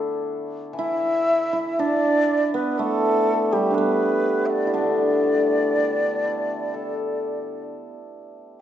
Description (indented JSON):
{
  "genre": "chinese traditional, Chinese chamber ensemble",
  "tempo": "61 BPM",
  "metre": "4/4",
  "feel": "straight",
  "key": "D zhi mode",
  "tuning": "A4 = 440 Hz",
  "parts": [
    { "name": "breathy xiao", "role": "melody", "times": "0.0-7.6 s", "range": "G4 to E5", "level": "-24 LUFS", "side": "equal", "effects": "none" },
    { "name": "hammered dulcimer", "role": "second line", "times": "0.0-8.5 s", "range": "G3 to E4", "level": "-23 LUFS", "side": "right 2 dB", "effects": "none" },
    { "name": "hammered dulcimer", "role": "accompaniment", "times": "0.0-8.6 s", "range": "D3 to A4", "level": "-27 LUFS", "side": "left 4 dB", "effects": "none" }
  ],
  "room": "wet recital hall reverb, RT60 1.5 s",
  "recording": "nothing above 7.9 kHz",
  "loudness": "-20 LUFS",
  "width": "side -10 dB against mid",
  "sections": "0.8-8.6 A section",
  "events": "none",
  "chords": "none",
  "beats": "| 0.77 1.77 2.78 3.77 | 4.76 5.74 6.72 7.69"
}